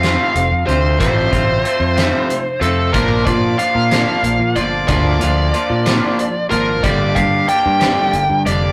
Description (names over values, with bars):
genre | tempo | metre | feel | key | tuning
indie rock | 62 BPM (dotted quarters) | 6/8 | straight | unclear | A4 = 440 Hz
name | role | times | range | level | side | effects
bluesy overdriven lead guitar | melody | 0.0-8.7 s | A4 to G5 | -20 LUFS | equal | distortion
electric guitar through a small old amp | riff | 0.0-8.7 s | F3 to G4 | -23 LUFS | equal | spring reverb
raw garage guitar | riff | 0.0-8.7 s | F2 to Bb3 | -25 LUFS | equal | overdrive
modern bright fingered electric bass | bass | 0.0-8.7 s | F1 to Bb2 | -21 LUFS | equal | none
loose indie drum kit | drums | 0.0-8.6 s | hi-hat, kick drum, snare drum | -23 LUFS | equal | none
room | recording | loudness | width
light reverb | rough rehearsal-room recording, tube saturation | -16 LUFS | mono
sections
0.0-8.7 A section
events
none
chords
0.0 F; 2.9 Bb; 6.8 Gm